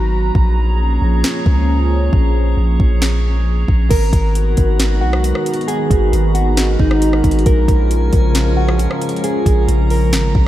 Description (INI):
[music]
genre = hip hop, atmospheric cloud-rap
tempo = 135 BPM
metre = 4/4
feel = half-time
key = G# dorian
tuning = A4 = 440 Hz
[part]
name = dark analog pad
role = sustained chords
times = 0.0-10.5 s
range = C#3 to A#5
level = -20 LUFS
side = equal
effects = chorus, phaser, sidechain pumping
[part]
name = long sustained 808-style bass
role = bass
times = 0.0-10.5 s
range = G#1 to C#2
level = -15 LUFS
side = equal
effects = none
[part]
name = drifting glass-harmonics texture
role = texture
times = 0.0-10.5 s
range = B3 to A#5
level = -29 LUFS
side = right 1 dB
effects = chorus, built-in reverb
[part]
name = smooth R&B drum kit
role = drums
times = 0.3-10.5 s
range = crash cymbal, hi-hat, kick drum, rim click, snare drum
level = -18 LUFS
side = equal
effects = none
[part]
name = mellow electric guitar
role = melody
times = 3.9-10.1 s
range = D#4 to A#4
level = -20 LUFS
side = right 1 dB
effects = phaser, diffuse ambient delay
[sound]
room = moderate cathedral reverb, RT60 5.1 s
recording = dreamy mix soaked in reverb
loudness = -12 LUFS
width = side -14 dB against mid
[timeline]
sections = 0.0-3.9 A section; 3.9-10.5 B section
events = none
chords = 0.3 A#m7; 3.9 G#m9; 7.5 A#m7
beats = | 0.35 0.80 1.24 1.68 | 2.13 2.57 3.02 3.46 | 3.91 4.35 4.79 5.24 | 5.68 6.13 6.57 7.02 | 7.46 7.91 8.35 8.79 | 9.24 9.68 10.13